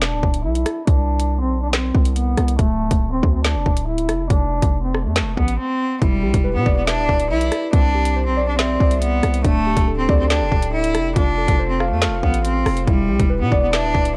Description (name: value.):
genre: hip hop, drill.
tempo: 140 BPM.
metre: 4/4.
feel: half-time.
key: E phrygian.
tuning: A4 = 440 Hz.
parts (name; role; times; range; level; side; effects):
bright cello; melody; 0.0-14.1 s; G3 to E4; -24 LUFS; equal; low-pass filter, tape echo.
hard-hitting 808-style bass; bass; 0.0-14.2 s; D1 to B2; -23 LUFS; equal; none.
drill drum kit; drums; 0.0-14.2 s; handclaps, hi-hat, kick drum, rim click, snare drum; -22 LUFS; equal; none.
muted felt-like synth keys; accompaniment; 6.0-14.2 s; C4 to F6; -26 LUFS; equal; chorus, low-pass filter.
room: digital ambience.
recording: dry, gritty hardware recording, cassette tape.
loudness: -19 LUFS.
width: mono.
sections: 0.0-14.2 A section.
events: filter sweep 0.0-6.0; break 5.6-6.0.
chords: 0.0 E7(no3); 0.9 Csus2; 2.6 D5; 4.3 F; 6.0 Em7; 7.7 Cadd9; 9.4 Dsus4; 11.2 F; 12.9 Em7.